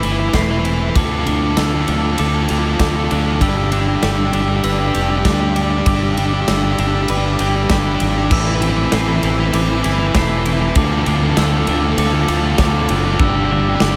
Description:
post-rock; 98 BPM; 4/4; straight; A4 = 440 Hz
clean electric guitar; arpeggios; 0.0-14.0 s; D3 to B4; -25 LUFS; equal; lush chorus, delay
glockenspiel with soft plastic mallets; arpeggios; 0.0-14.0 s; D6 to C7; -27 LUFS; equal; delay
thick fuzz guitar; riff; 0.0-14.0 s; D4 to B4; -22 LUFS; equal; distortion
fingered electric bass; bass; 0.0-14.0 s; E1 to D2; -21 LUFS; equal
big rock drum kit; drums; 0.0-13.9 s; crash cymbal, kick drum, ride cymbal, snare drum; -23 LUFS; equal
raw garage guitar; riff; 8.3-14.0 s; G2 to A3; -26 LUFS; equal
moderate huge ambient reverb, RT60 8.9 s; dreamy mix soaked in reverb; -16 LUFS; mono
0.0-14.0 A section
build-up 0.0-14.0
0.0 Amadd9; 1.0 Dm; 3.4 G; 8.3 Amadd9; 10.8 Dm; 13.2 G5

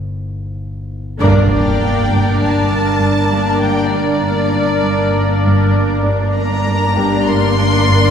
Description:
cinematic, suspense film score; 99 BPM; 4/4; straight; G minor; A4 = 440 Hz
metallic inharmonic drone; drone; 0.0-8.1 s; G1; -24 LUFS; left 1 dB; chorus, built-in reverb
warm grand piano; texture; 0.0-8.1 s; G4 to D6; -30 LUFS; left 2 dB
warm studio violin section; second line; 1.2-8.1 s; Bb4 to D5; -24 LUFS; left 1 dB
warm studio viola section; accompaniment; 1.2-8.1 s; Bb3 to D4; -21 LUFS; right 1 dB
bubbling stepped-filter texture; sustained chords; 1.5-8.1 s; D4 to D5; -22 LUFS; right 1 dB; chorus, built-in reverb
mellow French horn section; sustained chords; 1.2-8.1 s; Bb3 to D4; -21 LUFS; left 4 dB
warm studio cello section; riff; 1.2-8.1 s; G2 to G3; -19 LUFS; right 1 dB
dark studio double bass section; bass; 1.2-8.1 s; G1; -20 LUFS; right 2 dB
rich studio cello section; bass; 1.2-8.1 s; G2; -23 LUFS; right 2 dB
impact; sound effects; 1.2-3.6 s; -24 LUFS; equal
warm chamber violin section; melody; 1.5-8.1 s; D5 to C6; -20 LUFS; left 2 dB
wet scoring stage reverb, RT60 1.9 s; heard from further back in the room; -12 LUFS; side -7 dB against mid
0.0-1.2 A section; 1.2-8.1 B section
break 0.0-1.2; band accent 1.2-1.8; impact 1.2-3.6
0.0 N.C.; 1.2 Gm

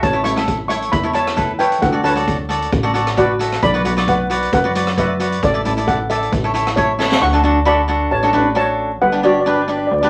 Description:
calypso; 134 BPM; 4/4; straight; D major; A4 = 440 Hz
steel pan; melody; 0.0-10.1 s; E4 to C#6; -21 LUFS; equal
plucky analog bass; bass; 0.0-10.1 s; G1 to F#2; -24 LUFS; equal
street-band drum kit; drums; 0.0-7.2 s; hi-hat, kick drum, rim click, snare drum; -24 LUFS; equal
cavaquinho; accompaniment; 0.1-10.1 s; D4 to E5; -21 LUFS; equal
wet small room reverb, RT60 0.5 s; vinyl crackle; -17 LUFS; mono
0.0-7.2 A section; 7.2-10.1 B section
drum fill 7.0
0.0 A; 1.8 D; 3.6 Bm; 5.4 Asus4; 6.3 A; 7.2 Dmaj7; 9.0 Gmaj7

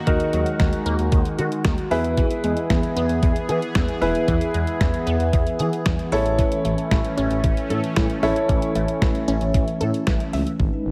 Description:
synth-pop; 114 BPM; 4/4; straight; A4 = 440 Hz
clear grand piano; accompaniment; 0.0-10.3 s; D#4 to C#5; -28 LUFS; equal
sweeping resonant pad; sustained chords; 0.0-10.9 s; D#3 to B4; -29 LUFS; equal; chorus
resonant blip pluck; arpeggios; 0.0-10.6 s; D#3 to E5; -32 LUFS; equal; phaser, tape echo
smooth gliding synth bass; bass; 0.1-10.9 s; E1 to E3; -27 LUFS; equal
detuned 8-bit digital drum machine; drums; 0.1-10.7 s; hi-hat, kick drum, snare drum; -25 LUFS; equal; gated reverb
moderate concert hall reverb, RT60 1.9 s; -21 LUFS; mono
0.0-10.6 A section
0.0 D#m; 1.9 E; 6.1 A

